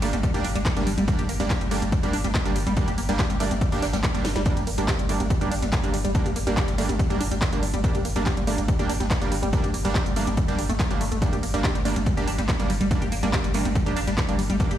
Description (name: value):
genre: driving peak-time techno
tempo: 142 BPM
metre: 4/4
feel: straight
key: G minor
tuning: A4 = 440 Hz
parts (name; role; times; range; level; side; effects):
- tight sequenced synth; riff; 0.0-14.7 s; F#3 to G4; -29 LUFS; left 2 dB; chorus, phaser, overdrive, sidechain pumping, ping-pong delay
- supersaw stab; stabs; 0.0-14.7 s; G3 to D4; -29 LUFS; right 4 dB; sidechain pumping, digital delay
- warm sub bass; bass; 0.0-14.8 s; G1; -29 LUFS; equal; tube saturation, sidechain pumping, low-pass filter
- compact cocktail drum kit; drums; 0.0-14.7 s; hi-hat, snare drum; -40 LUFS; right 2 dB; none
- techno drum kit; drums; 0.0-14.8 s; handclaps, hi-hat, ride cymbal, snare drum, toms; -30 LUFS; right 1 dB; sidechain pumping on hats, sidechain pumping on cymbals, sidechain pumping on toms
- electronic kick drum; drums; 0.2-14.7 s; none; -25 LUFS; equal; overdrive
room: light reverb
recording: played on a big sound system in a bare room, stone room reverb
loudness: -21 LUFS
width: side -11 dB against mid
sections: 0.0-14.8 A section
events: drum fill 4.2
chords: 0.0 Gm